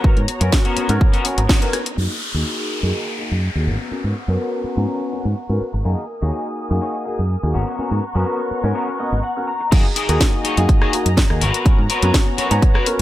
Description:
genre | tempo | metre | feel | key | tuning
filtered disco house | 124 BPM | 4/4 | straight | F# major | A4 = 438 Hz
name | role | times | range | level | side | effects
warm concert grand piano | accompaniment | 0.0-13.0 s | A#3 to A#5 | -24 LUFS | left 1 dB | phaser, vintage 12-bit sampler grit, sidechain pumping, low-pass filter
muted studio string section | sustained chords | 0.0-13.0 s | B3 to D#6 | -29 LUFS | equal | sidechain pumping, low-pass filter
electric guitar at the edge of break-up | riff | 0.0-13.0 s | B3 to A#5 | -26 LUFS | left 4 dB | ensemble chorus, sidechain pumping, low-pass filter
modern bright fingered electric bass | bass | 0.0-13.0 s | G#1 to G#2 | -19 LUFS | equal | sidechain pumping, low-pass filter
electronic kick drum | drums | 0.0-1.6, 9.7-12.7 s | none | -15 LUFS | equal | none
house drum kit | drums | 0.2-2.0, 9.7-13.0 s | crash cymbal, hi-hat, rim click, snare drum | -22 LUFS | left 1 dB | sidechain pumping on hats, low-pass filter on hats, low-pass filter on snare, sidechain pumping on cymbals, low-pass filter on cymbals, low-pass filter on room
downlifter | sound effects | 2.0-5.8 s | none | -29 LUFS | left 2 dB | none
room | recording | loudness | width
light reverb | none | -16 LUFS | side -14 dB against mid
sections
0.0-2.0 A section; 2.0-9.7 B section; 9.7-13.0 C section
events
filter sweep 0.0-2.0, 2.0-9.7; band accent 1.5; clean electric guitar fill 8.8-9.7; drop 9.7-13.0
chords
0.0 G#m11; 2.0 F#69; 3.7 G#m11; 5.8 F#69; 7.5 G#m11; 9.7 F#69; 11.4 G#m11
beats
| 0.04 0.53 1.01 1.50 | 1.98 2.46 2.95 3.43 | 3.91 4.40 4.88 5.37 | 5.85 6.33 6.82 7.30 | 7.79 8.27 8.75 9.24 | 9.72 10.21 10.69 11.17 | 11.66 12.14 12.62

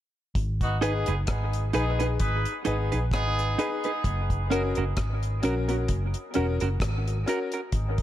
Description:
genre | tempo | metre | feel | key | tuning
dub reggae | 65 BPM | 4/4 | swing 56% on 16ths | G# minor | A4 = 441 Hz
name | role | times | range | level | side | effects
vintage muted fingered electric bass | bass | 0.4-8.0 s | E1 to A#1 | -27 LUFS | equal | none
deep reggae drum kit | drums | 0.4-8.0 s | hi-hat, kick drum, rim click | -31 LUFS | equal | none
clear horn section | second line | 0.6-8.0 s | B3 to B4 | -33 LUFS | right 1 dB | high-pass filter, dub echo
clean electric guitar | accompaniment | 0.8-7.6 s | C#4 to B4 | -32 LUFS | right 5 dB | high-pass filter, low-pass filter, dub echo
clear upright piano | stabs | 0.8-7.5 s | C#4 to B4 | -32 LUFS | left 4 dB | high-pass filter, low-pass filter, dub echo
room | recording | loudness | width
light reverb, studio ambience | none | -24 LUFS | side -12 dB against mid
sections
0.3-7.7 A section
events
none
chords
0.3 G#m; 4.0 F#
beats
| 0.35 1.27 2.19 3.12 | 4.04 4.96 5.89 6.81 | 7.73

